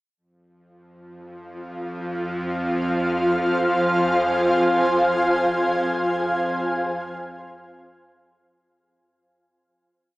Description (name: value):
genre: dark ambient drone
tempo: free time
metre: none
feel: none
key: F minor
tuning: A4 = 440 Hz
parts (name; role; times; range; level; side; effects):
- granular cloud pad; sustained chords; 1.6-8.6 s; F4 to Ab5; -21 LUFS; equal; built-in reverb
- bowed-like drone; drone; 1.5-8.7 s; F2 to F3; -26 LUFS; equal; built-in reverb
room: wet huge ambient reverb, RT60 8.7 s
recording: small speaker sound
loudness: -19 LUFS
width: side -19 dB against mid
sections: 0.2-8.6 A section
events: fade-in on synth drone 0.2-8.6; fade-in on ambient pad 0.2-8.6; fade-out 4.4-8.6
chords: 0.2 Fm